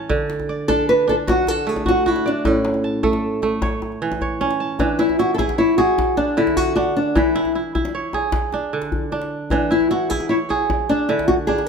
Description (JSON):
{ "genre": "west african traditional, West African string and xylophone music", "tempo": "102 BPM (dotted quarters)", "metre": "12/8", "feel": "straight", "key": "D lydian", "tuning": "A4 = 439 Hz", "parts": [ { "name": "kora", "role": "arpeggios", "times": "0.0-11.7 s", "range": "A2 to A5", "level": "-22 LUFS", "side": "right 4 dB", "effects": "none" }, { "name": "djembe", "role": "percussion", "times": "0.1-11.7 s", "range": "none", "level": "-26 LUFS", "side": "left 2 dB", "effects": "none" }, { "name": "nylon-string guitar", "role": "melody", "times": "0.7-11.7 s", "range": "C#4 to B4", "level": "-18 LUFS", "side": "left 1 dB", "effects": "none" } ], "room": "moderate recital hall reverb, RT60 1.4 s", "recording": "none", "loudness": "-17 LUFS", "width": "side -6 dB against mid", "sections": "0.0-4.8 A section; 4.8-11.7 B section", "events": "none", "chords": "0.1 D; 2.4 A; 4.8 E; 6.0 Dadd9; 7.2 E; 8.3 N.C.; 9.5 E; 10.7 Dadd9" }